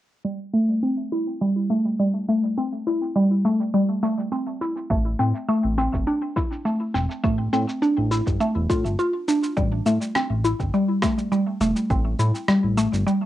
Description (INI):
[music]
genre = organic downtempo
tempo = 103 BPM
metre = 4/4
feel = swing 53% on 16ths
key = A minor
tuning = A4 = 440 Hz
[part]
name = mallet-like synth pluck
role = arpeggios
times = 0.2-13.2 s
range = G3 to F4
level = -21 LUFS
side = equal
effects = chorus, phaser, cassette tape, tape echo
[part]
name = electronic cabasa and rim click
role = drums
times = 0.3-13.2 s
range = none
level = -31 LUFS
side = equal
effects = cassette tape
[part]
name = smooth synth bass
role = bass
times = 4.9-13.0 s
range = E1 to A2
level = -24 LUFS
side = equal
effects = none
[part]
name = electronic kick drum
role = drums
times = 4.9-12.0 s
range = none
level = -25 LUFS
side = equal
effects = cassette tape
[sound]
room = wet studio ambience, RT60 0.5 s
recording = home recording on cassette, low-pass filter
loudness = -20 LUFS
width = side -14 dB against mid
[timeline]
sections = 0.2-9.6 A section; 9.6-13.3 B section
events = filter sweep on synth pluck 0.2-9.6; filter sweep 0.2-9.6; kick drops out 9.0-9.6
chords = 0.2 Am7; 4.9 D7(no3) (rootless); 9.6 A7(no3)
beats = | 0.25 0.83 1.41 2.00 | 2.58 3.16 3.74 4.33 | 4.91 5.49 6.07 6.66 | 7.24 7.82 8.40 8.99 | 9.57 10.15 10.73 11.32 | 11.90 12.48 13.06